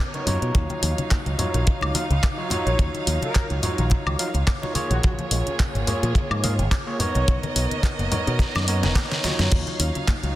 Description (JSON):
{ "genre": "nu-disco, nu disco", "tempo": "107 BPM", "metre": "4/4", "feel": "swing 55% on 16ths", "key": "Eb minor", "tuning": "A4 = 441 Hz", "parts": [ { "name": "rich chamber string section", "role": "sustained chords", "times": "0.0-10.4 s", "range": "Bb3 to F5", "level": "-31 LUFS", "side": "right 2 dB", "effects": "sidechain pumping" }, { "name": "wide unison pluck", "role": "arpeggios", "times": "0.0-10.3 s", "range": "C#3 to Db4", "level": "-35 LUFS", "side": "left 3 dB", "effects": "none" }, { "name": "overdriven tine electric piano", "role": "accompaniment", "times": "0.1-10.3 s", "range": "F#3 to F5", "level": "-29 LUFS", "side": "equal", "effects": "sidechain pumping" }, { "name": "pop drum kit", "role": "drums", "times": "0.1-10.3 s", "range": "crash cymbal, handclaps, hi-hat, snare drum, woodblock", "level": "-27 LUFS", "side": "left 1 dB", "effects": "overdrive" }, { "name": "picked electric bass with an envelope filter", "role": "bass", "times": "0.3-10.3 s", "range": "F#1 to B2", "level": "-24 LUFS", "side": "equal", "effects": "tube saturation" }, { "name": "congas", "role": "percussion", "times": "0.3-10.2 s", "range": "none", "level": "-31 LUFS", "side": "left 1 dB", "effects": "none" }, { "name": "kick drum", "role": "drums", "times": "0.5-10.2 s", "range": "none", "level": "-22 LUFS", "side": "equal", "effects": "soft clipping on snare" }, { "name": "mellow trumpet section", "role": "melody", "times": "2.7-7.4 s", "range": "Gb4 to C#5", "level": "-34 LUFS", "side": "equal", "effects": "tape echo" } ], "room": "light reverb, studio reverb", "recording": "dense, heavily limited modern master", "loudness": "-20 LUFS", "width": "side -15 dB against mid", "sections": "0.0-10.4 A section", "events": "drum fill 8.4-9.5", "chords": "0.0 Bmaj9; 0.5 Ebm9; 5.0 Bbm7; 7.0 Bmaj9; 9.5 Ebm9" }